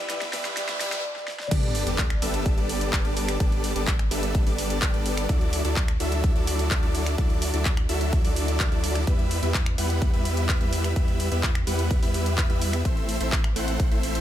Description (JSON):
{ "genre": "EDM, festival progressive house", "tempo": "127 BPM", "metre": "4/4", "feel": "straight", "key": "G major", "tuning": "A4 = 442 Hz", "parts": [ { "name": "vibraphone with medium mallets", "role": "melody", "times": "0.0-1.5 s", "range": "D5", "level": "-36 LUFS", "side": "left 2 dB", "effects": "ping-pong delay" }, { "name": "big supersaw lead", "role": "riff", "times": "0.0-14.2 s", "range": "F#3 to F#5", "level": "-28 LUFS", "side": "equal", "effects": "sidechain pumping, ping-pong delay" }, { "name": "saturated sub bass", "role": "bass", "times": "0.0-14.2 s", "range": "G1 to E2", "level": "-28 LUFS", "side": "equal", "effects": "sidechain pumping, high-pass filter" }, { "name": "riser, noise sweep and sub drop", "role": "sound effects", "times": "0.0-3.4 s", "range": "none", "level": "-34 LUFS", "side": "equal", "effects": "none" }, { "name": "clear grand piano", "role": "accompaniment", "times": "0.1-0.9 s", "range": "E3 to G4", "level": "-46 LUFS", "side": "right 3 dB", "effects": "none" }, { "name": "big-room dance drum kit", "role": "drums", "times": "0.1-14.2 s", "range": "crash cymbal, finger snaps, handclaps, hi-hat, snare drum", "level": "-31 LUFS", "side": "equal", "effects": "overdrive" }, { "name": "electronic kick drum", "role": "drums", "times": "1.5-13.9 s", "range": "none", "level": "-24 LUFS", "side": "equal", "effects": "none" } ], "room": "digital ambience", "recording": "high-pass filter", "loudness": "-22 LUFS", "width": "side -12 dB against mid", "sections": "0.0-1.5 A section; 1.5-14.2 B section", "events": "build-up 0.0-1.5; drum fill 0.0-1.0, 1.2-1.5; riser 0.0-1.0; noise sweep 0.0-1.5; break 1.0-1.5; drop 1.5-14.2; impact 1.5-3.4", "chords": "0.0 A5; 1.5 Gadd9; 5.3 Dadd9; 9.1 Em; 12.9 Am" }